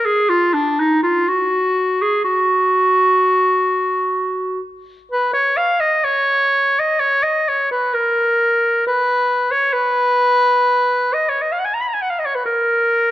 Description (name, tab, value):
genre	classical, free, expressive piece for unaccompanied clarinet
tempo	61-70 BPM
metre	4/4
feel	rubato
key	unclear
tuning	A4 = 440 Hz
part	bright clarinet	solo	0.0-13.1 s	D4 to Cb6	-14 LUFS	equal	none
room	moderate recital hall reverb, RT60 1.6 s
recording	dark, warm production, faint mains hum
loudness	-14 LUFS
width	side -14 dB against mid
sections	0.0-13.1 A section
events	none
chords	none